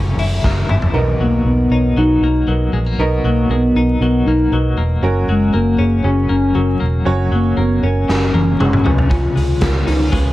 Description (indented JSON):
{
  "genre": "jangly indie pop",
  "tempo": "118 BPM",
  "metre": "4/4",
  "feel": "straight",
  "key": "B major",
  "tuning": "A4 = 439 Hz",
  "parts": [
    { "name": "twelve-string electric guitar", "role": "arpeggios", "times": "0.0-10.3 s", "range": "F#2 to E#4", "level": "-23 LUFS", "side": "left 4 dB", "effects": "tremolo" },
    { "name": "vintage muted fingered electric bass", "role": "bass", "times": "0.0-10.3 s", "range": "E1 to C#2", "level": "-17 LUFS", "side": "equal", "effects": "none" },
    { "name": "raw garage drum kit", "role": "drums", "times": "0.2-0.9, 8.1-10.2 s", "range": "hi-hat, kick drum, snare drum, toms", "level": "-18 LUFS", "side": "equal", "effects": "none" },
    { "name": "warm upright piano", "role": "accompaniment", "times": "0.9-10.3 s", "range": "B3 to C#5", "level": "-22 LUFS", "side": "right 4 dB", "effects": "none" },
    { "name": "hollow clarinet-like synth lead", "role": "melody", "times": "1.2-10.3 s", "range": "G#3 to E#4", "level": "-17 LUFS", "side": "left 1 dB", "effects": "chorus" }
  ],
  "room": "light reverb",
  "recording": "vinyl crackle",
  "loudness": "-13 LUFS",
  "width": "side -16 dB against mid",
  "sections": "1.0-10.3 A section",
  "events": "drum fill 0.4-1.0, 8.1-9.1",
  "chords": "0.0 F#7; 1.0 Bmaj7; 5.0 F#; 8.9 C#7"
}